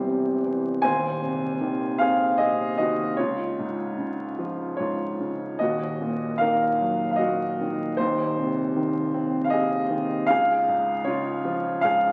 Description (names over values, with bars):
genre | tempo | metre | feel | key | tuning
classical, lyrical solo piano | 77 BPM | 3/4 | rubato | unclear | A4 = 440 Hz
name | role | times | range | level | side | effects
dark grand piano | solo | 0.0-12.1 s | Eb1 to Ab5 | -25 LUFS | equal | none
room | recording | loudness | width
wet recital hall reverb, RT60 1.5 s | very old 78 rpm record, vinyl crackle | -25 LUFS | mono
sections
0.0-12.1 A section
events
none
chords
0.0 C/E; 0.8 Ab/Eb; 3.2 Db; 5.6 Ebm; 8.0 Ab/Eb; 10.3 Db